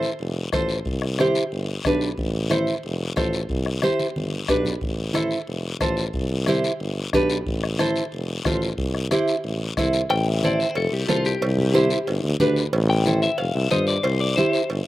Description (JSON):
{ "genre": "latin, cumbia", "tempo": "182 BPM", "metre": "4/4", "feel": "straight", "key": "A minor", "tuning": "A4 = 440 Hz", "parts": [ { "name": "nylon-string guitar", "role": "accompaniment", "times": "0.0-14.6 s", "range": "D4 to C5", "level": "-23 LUFS", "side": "right 1 dB", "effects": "slapback echo" }, { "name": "warm tuba", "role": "bass", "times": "0.0-14.8 s", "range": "F1 to G2", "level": "-25 LUFS", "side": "equal", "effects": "none" }, { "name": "guiro", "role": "percussion", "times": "0.0-14.9 s", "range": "none", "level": "-32 LUFS", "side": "left 5 dB", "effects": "none" }, { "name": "congas", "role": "percussion", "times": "0.2-14.9 s", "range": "none", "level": "-33 LUFS", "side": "equal", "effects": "none" }, { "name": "bombo", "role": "percussion", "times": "0.5-9.9 s", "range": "none", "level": "-29 LUFS", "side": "left 2 dB", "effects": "none" }, { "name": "clean electric guitar", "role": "melody", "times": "10.1-14.7 s", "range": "F4 to G5", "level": "-25 LUFS", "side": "left 4 dB", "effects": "spring reverb, slapback echo" }, { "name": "cowbell and timbales", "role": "percussion", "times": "10.1-14.9 s", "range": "none", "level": "-29 LUFS", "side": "right 4 dB", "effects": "slapback echo" } ], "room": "little or no reverb", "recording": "recorded outdoors, with no room sound", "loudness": "-20 LUFS", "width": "side -16 dB against mid", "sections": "0.0-10.1 A section; 10.1-14.9 B section", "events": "drum fill 4.0-4.8; clean electric guitar solo 10.1-14.9", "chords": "0.2 F; 0.9 C; 1.5 G; 2.2 Am; 2.8 F; 3.5 C; 4.2 G; 4.8 Am; 5.5 F; 6.1 C; 6.8 G; 7.5 Am; 8.1 F; 8.8 C; 9.4 Am; 10.8 F; 11.4 C; 12.1 G; 12.7 Am; 13.4 F; 14.0 C" }